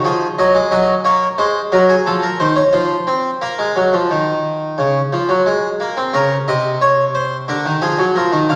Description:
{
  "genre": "classical, baroque-style two-part invention for harpsichord",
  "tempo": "89 BPM",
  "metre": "4/4",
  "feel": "straight",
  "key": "Bb minor",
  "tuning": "A4 = 439 Hz",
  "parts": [
    { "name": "harpsichord", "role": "solo", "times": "0.0-8.6 s", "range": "C3 to F5", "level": "-16 LUFS", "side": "equal", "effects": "none" }
  ],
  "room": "wet scoring stage reverb, RT60 1.5 s",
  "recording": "vinyl crackle",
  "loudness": "-16 LUFS",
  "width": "mono",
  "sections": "0.0-6.1 A section; 6.1-8.6 B section",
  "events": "none",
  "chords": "0.0 G#5; 0.7 Ebm/Gb; 2.1 F7; 3.4 Bbm; 7.5 Bb7/D",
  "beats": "0.06 | 0.72 1.39 2.06 2.74 | 3.42 4.10 4.78 5.46 | 6.13 6.81 7.48 8.15"
}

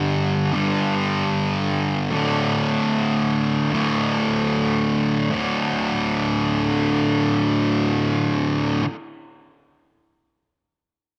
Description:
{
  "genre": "rock",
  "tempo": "free time",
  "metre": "none",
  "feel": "none",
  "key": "unclear",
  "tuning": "A4 = 440 Hz",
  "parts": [
    { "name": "fuzz guitar", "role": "solo", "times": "0.0-8.8 s", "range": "D2 to G3", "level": "-21 LUFS", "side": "equal", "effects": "distortion, slapback echo" }
  ],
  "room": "light reverb",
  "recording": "none",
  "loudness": "-21 LUFS",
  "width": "mono",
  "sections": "0.0-5.3 A section; 5.3-8.5 B section",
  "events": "none",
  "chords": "0.0 G5; 2.1 D5",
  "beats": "free time"
}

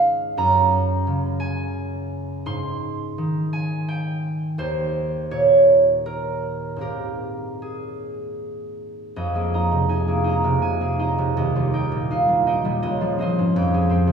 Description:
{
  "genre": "classical, solo harp piece",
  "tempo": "75-88 BPM",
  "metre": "3/4",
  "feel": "rubato",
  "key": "Ab major, F minor from 9.2 s",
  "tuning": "A4 = 441 Hz",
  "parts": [
    { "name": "concert harp", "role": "solo", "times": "0.0-14.1 s", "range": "Db2 to C6", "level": "-19 LUFS", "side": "right 2 dB", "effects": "none" }
  ],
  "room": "wet recital hall reverb, RT60 1.8 s",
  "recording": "recorded in a church or concert hall, studio reverb",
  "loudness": "-19 LUFS",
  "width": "side -6 dB against mid",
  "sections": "0.0-9.2 A section; 9.2-14.1 B section",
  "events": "none",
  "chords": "0.4 Gbadd9; 2.5 Abmaj7; 4.6 Eb6; 6.8 Abmaj9; 9.2 Fm11; 11.4 Ebadd9; 12.8 Dbmaj9; 13.5 Fmadd9",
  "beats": "| 0.37 1.07 1.75 | 2.46 3.18 3.89 | 4.59 5.32 6.07 | 6.83 7.62 8.41 | 9.17 9.90 10.63 | 11.37 12.10 12.82 | 13.54"
}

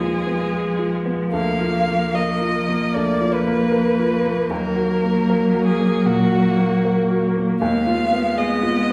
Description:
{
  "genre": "classical, slow romantic movement for piano quartet",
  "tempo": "77 BPM",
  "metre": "4/4",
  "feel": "rubato",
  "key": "Eb minor",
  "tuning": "A4 = 438 Hz",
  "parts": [
    { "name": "rich violin", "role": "melody", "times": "0.0-8.9 s", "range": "Gb4 to F5", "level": "-26 LUFS", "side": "equal", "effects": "none" },
    { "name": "rich cello", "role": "second line", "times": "0.0-8.9 s", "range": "F3 to Ab3", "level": "-24 LUFS", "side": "equal", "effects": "none" },
    { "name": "clear baby grand piano", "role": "accompaniment", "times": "0.0-8.9 s", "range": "D2 to Bb4", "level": "-24 LUFS", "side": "equal", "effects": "none" },
    { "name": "rich viola", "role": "accompaniment", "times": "0.0-8.9 s", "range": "Ab3 to Cb4", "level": "-28 LUFS", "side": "equal", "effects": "none" }
  ],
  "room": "wet recital hall reverb, RT60 1.3 s",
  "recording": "heard from further back in the room",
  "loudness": "-19 LUFS",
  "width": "mono",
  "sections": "0.0-8.9 A section",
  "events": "none",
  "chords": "0.0 Fm7b5/Eb; 1.3 Bb/D; 4.5 Ebm; 7.6 Fm7b5/Eb",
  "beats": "0.53 | 1.34 2.15 2.94 3.72 | 4.50 5.29 6.05 6.83 | 7.61 8.38"
}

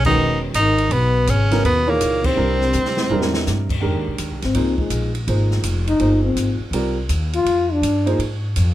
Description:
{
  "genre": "modal jazz",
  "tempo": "165 BPM",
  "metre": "4/4",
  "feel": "swing 66% on 8ths",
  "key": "F dorian from 3.8 s",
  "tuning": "A4 = 440 Hz",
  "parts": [
    { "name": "bright tenor saxophone", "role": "melody", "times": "0.0-3.5 s", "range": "Bb3 to Eb4", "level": "-20 LUFS", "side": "right 1 dB", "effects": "none" },
    { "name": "breathy trombone", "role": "second line", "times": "0.0-8.1 s", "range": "Bb2 to F4", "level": "-22 LUFS", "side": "left 2 dB", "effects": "none" },
    { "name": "upright bass", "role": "bass", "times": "0.0-8.7 s", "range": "Fb1 to Ab2", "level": "-20 LUFS", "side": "equal", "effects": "none" },
    { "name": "open jazz drum kit", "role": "drums", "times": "0.0-8.7 s", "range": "crash cymbal, hi-hat, kick drum, ride cymbal, snare drum, toms", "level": "-27 LUFS", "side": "right 1 dB", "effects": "none" },
    { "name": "warm upright piano", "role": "accompaniment", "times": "0.1-8.2 s", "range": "Db3 to D5", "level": "-24 LUFS", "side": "right 2 dB", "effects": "none" }
  ],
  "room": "moderate club reverb, RT60 0.7 s",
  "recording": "none",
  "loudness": "-17 LUFS",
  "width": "side -13 dB against mid",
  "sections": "0.0-3.8 A section; 3.8-8.7 B section",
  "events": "band accent 0.0, 2.2; drum fill 2.7-3.5; trombone solo 3.8-8.7",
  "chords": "0.0 Gb13sus4; 2.4 C7; 3.8 Fm11",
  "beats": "0.19 0.55 | 0.92 1.28 1.64 2.01 | 2.37 2.74 3.10 3.46 | 3.83 4.19 4.56 4.92 | 5.29 5.65 6.01 6.38 | 6.74 7.11 7.47 7.84 | 8.20 8.57"
}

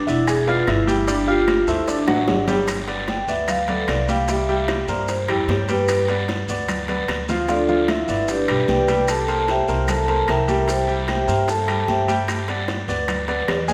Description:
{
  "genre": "Afro-Cuban jazz",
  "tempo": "150 BPM",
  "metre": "4/4",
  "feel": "straight",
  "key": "G mixolydian",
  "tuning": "A4 = 440 Hz",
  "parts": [
    { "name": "vibraphone with medium mallets", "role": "melody", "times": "0.0-13.7 s", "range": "D4 to Bb5", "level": "-24 LUFS", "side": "equal", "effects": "none" },
    { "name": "steel pan", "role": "second line", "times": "0.0-2.4 s", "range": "D5 to Ab5", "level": "-31 LUFS", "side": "equal", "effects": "none" },
    { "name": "clear grand piano", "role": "accompaniment", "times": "0.1-13.7 s", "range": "F3 to Ab5", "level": "-27 LUFS", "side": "equal", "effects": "none" },
    { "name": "upright bass", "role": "bass", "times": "0.1-13.7 s", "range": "E1 to G2", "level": "-28 LUFS", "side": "equal", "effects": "none" },
    { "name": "bongos", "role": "percussion", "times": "0.1-13.7 s", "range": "none", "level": "-35 LUFS", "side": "equal", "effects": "none" },
    { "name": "congas", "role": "percussion", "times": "0.1-13.7 s", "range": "none", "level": "-34 LUFS", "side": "equal", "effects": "none" },
    { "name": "guiro", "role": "percussion", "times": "0.1-13.7 s", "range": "none", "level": "-37 LUFS", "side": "equal", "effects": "none" },
    { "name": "maracas", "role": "percussion", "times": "0.1-13.7 s", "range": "none", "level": "-41 LUFS", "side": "equal", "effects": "none" },
    { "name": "claves", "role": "percussion", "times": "0.3-13.7 s", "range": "none", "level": "-36 LUFS", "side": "equal", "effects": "none" },
    { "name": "timbales", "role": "percussion", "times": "0.3-13.7 s", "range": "none", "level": "-33 LUFS", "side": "equal", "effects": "none" }
  ],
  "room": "wet concert hall reverb, RT60 2.3 s",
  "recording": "recorded in a church or concert hall",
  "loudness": "-20 LUFS",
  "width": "mono",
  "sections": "0.0-2.7 A section; 2.7-13.7 B section",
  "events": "drum fill 2.1-2.7; vibraphone solo 2.7-13.7",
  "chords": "0.0 E5; 1.1 G5; 1.9 D7; 2.7 G; 4.3 C7; 5.9 G7; 7.5 Dm; 8.3 G; 9.1 C7; 12.3 G",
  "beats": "0.28 0.68 | 1.08 1.48 1.88 2.28 | 2.68 3.08 3.48 3.88 | 4.28 4.68 5.08 5.48 | 5.88 6.28 6.68 7.08 | 7.48 7.88 8.28 8.68 | 9.08 9.48 9.88 10.28 | 10.68 11.08 11.48 11.88 | 12.28 12.68 13.08 13.48"
}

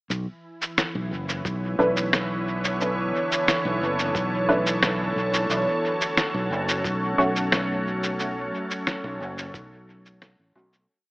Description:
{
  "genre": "ambient dub",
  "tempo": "89 BPM",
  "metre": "4/4",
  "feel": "straight",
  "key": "B minor",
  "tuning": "A4 = 443 Hz",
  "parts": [
    { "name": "soft additive organ-like pad", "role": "sustained chords", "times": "0.7-10.9 s", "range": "D3 to C#5", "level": "-26 LUFS", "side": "equal", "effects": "ensemble chorus, built-in reverb" },
    { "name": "fingered electric bass", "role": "bass", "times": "0.1-10.9 s", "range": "F#1 to B1", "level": "-30 LUFS", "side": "equal", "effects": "tube saturation" },
    { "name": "electronic shaker and snare drum", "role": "drums", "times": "0.1-10.9 s", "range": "none", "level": "-24 LUFS", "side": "equal", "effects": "dub echo" },
    { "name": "electronic kick drum", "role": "drums", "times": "1.4-9.7 s", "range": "none", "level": "-33 LUFS", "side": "equal", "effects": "none" },
    { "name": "filtered dub chord stab", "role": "stabs", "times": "1.8-10.8 s", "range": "A3 to B4", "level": "-26 LUFS", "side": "equal", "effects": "chorus, dub echo" }
  ],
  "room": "moderate echo chamber reverb, RT60 2.4 s",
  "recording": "AM radio sound",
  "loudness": "-22 LUFS",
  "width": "side -23 dB against mid",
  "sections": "0.1-10.9 groove",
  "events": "fade-out 7.3-10.9",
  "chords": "0.1 Bm11; 5.5 F#m",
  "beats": "| 0.10 0.78 1.45 2.13 | 2.80 3.48 4.15 4.82 | 5.50 6.17 6.84 7.52 | 8.19 8.87 9.54 10.22"
}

